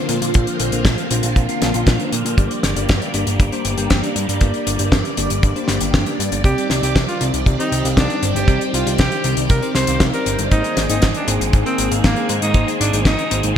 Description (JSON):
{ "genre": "italo disco", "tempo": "118 BPM", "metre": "4/4", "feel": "straight", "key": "C minor", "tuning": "A4 = 441 Hz", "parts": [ { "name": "phased string machine", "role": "sustained chords", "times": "0.0-13.6 s", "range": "D3 to D5", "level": "-23 LUFS", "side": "equal", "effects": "ensemble chorus, phaser" }, { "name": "bell-like tine electric piano", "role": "stabs", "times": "0.0-13.6 s", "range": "Bb3 to G5", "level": "-25 LUFS", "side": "left 2 dB", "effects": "ensemble chorus, low-pass filter, digital delay" }, { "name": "fat analog bass", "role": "bass", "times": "0.1-13.5 s", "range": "G1 to Bb2", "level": "-22 LUFS", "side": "equal", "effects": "none" }, { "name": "damped 70s drum kit", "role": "drums", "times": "0.1-13.5 s", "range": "hi-hat, snare drum", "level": "-21 LUFS", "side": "left 2 dB", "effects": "gated reverb" }, { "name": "kick drum", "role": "drums", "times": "0.4-13.2 s", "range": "none", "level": "-15 LUFS", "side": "equal", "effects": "none" }, { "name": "breathy alto saxophone", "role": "melody", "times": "6.4-13.4 s", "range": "Bb3 to C5", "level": "-22 LUFS", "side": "right 1 dB", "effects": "digital delay" } ], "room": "light reverb, studio ambience", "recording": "bright 1980s-style digital production", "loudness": "-15 LUFS", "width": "side -9 dB against mid", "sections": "0.0-13.6 A section", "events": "filter sweep on tine electric piano 0.0-13.6", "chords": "0.0 Bbadd9; 2.4 Gm; 6.4 Cmadd9; 10.5 Abadd9" }